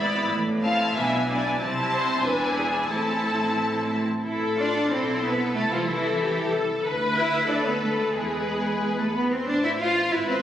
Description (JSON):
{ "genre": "quick classical-period movement for string orchestra", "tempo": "92 BPM", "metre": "2/4", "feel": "straight", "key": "A minor", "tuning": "A4 = 440 Hz", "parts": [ { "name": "warm symphonic violin section", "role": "melody", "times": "0.0-10.4 s", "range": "A4 to B5", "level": "-29 LUFS", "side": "left 3 dB", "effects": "none" }, { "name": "warm symphonic violin section", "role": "second line", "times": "0.0-10.4 s", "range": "E4 to F5", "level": "-29 LUFS", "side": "left 2 dB", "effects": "none" }, { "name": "rich symphonic viola section", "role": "accompaniment", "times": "0.0-10.4 s", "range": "B3 to B4", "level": "-29 LUFS", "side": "equal", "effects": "none" }, { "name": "clear symphonic cello section", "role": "bass", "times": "0.0-10.4 s", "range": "E2 to F4", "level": "-26 LUFS", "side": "right 1 dB", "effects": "none" }, { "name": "dark studio double bass section", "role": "bass", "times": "0.0-10.4 s", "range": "E1 to E2", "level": "-34 LUFS", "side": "right 1 dB", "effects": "none" } ], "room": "moderate concert hall reverb, RT60 2.4 s", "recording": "recorded on a phone in the room, studio reverb", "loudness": "-22 LUFS", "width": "side -10 dB against mid", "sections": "0.0-4.2 A section; 4.2-10.4 B section", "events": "none", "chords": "0.3 Am; 1.0 E7/B; 1.6 Am/C; 2.2 E7; 2.9 Am; 5.6 Am/C; 6.8 Asus24/D; 8.1 E; 9.5 Am", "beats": "| 0.32 0.96 | 1.60 2.25 | 2.90 3.58 | 4.24 4.91 | 5.55 6.20 | 6.84 7.48 | 8.14 8.81 | 9.47 10.12" }